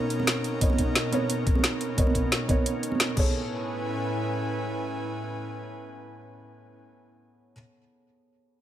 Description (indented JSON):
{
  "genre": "liquid drum and bass",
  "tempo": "176 BPM",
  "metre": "4/4",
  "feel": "straight",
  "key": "A lydian",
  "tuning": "A4 = 435 Hz",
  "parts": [
    { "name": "felt-muted upright piano", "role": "accompaniment", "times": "0.0-8.6 s", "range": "B3 to C#5", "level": "-32 LUFS", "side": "right 2 dB", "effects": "tape echo" },
    { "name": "airy breathy pad", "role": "sustained chords", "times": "0.0-6.8 s", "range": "A2 to G#5", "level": "-31 LUFS", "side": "left 1 dB", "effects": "chorus, sidechain pumping" },
    { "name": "garage drum kit", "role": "drums", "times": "0.1-3.2 s", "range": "crash cymbal, hi-hat, snare drum", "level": "-27 LUFS", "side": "equal", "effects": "overdrive" },
    { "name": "congas", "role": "percussion", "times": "0.2-3.0 s", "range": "none", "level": "-32 LUFS", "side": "right 4 dB", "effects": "none" },
    { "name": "electronic kick drum", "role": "drums", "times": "0.6-3.2 s", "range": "none", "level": "-24 LUFS", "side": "equal", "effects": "none" }
  ],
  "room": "light reverb, digital ambience",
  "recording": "none",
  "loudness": "-24 LUFS",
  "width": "side -11 dB against mid",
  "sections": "0.0-3.3 A section; 3.3-6.1 B section",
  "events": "none",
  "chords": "0.0 Bmaj9; 3.2 Amaj9"
}